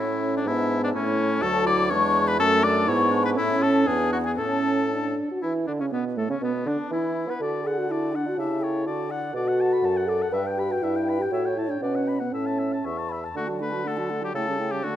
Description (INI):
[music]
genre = quick classical-period movement for wind quintet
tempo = 122 BPM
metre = 2/4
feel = rubato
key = A major, D major from 9.3 s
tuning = A4 = 440 Hz
[part]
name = mellow hollow concert flute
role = melody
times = 0.0-15.0 s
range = C#4 to D6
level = -32 LUFS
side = left 8 dB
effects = none
[part]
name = clear oboe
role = second line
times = 0.0-15.0 s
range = B3 to B5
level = -28 LUFS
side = left 3 dB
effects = none
[part]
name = dark clarinet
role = accompaniment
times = 0.0-15.0 s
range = A3 to E5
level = -30 LUFS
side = right 6 dB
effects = none
[part]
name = mellow French horn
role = accompaniment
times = 0.0-15.0 s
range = F#3 to B4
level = -26 LUFS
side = equal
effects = none
[part]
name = warm bassoon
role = bass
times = 0.0-15.0 s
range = D2 to B3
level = -29 LUFS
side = right 2 dB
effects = none
[sound]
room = moderate scoring stage reverb, RT60 1.9 s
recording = none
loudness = -22 LUFS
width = side -11 dB against mid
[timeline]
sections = 0.0-5.4 A section; 5.4-13.4 B section; 13.4-15.0 A section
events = none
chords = 0.5 E7/G#; 0.9 A; 1.4 D; 1.9 E7; 2.4 F#m; 2.9 E/G#; 3.4 A; 3.9 E7; 4.4 A; 6.4 Bm; 6.9 E5; 7.4 D; 8.4 A7/C#; 8.9 D; 9.3 Bm7; 10.3 Em/G; 11.3 A7; 11.8 Bm; 12.3 A; 13.4 D; 14.3 A7/C#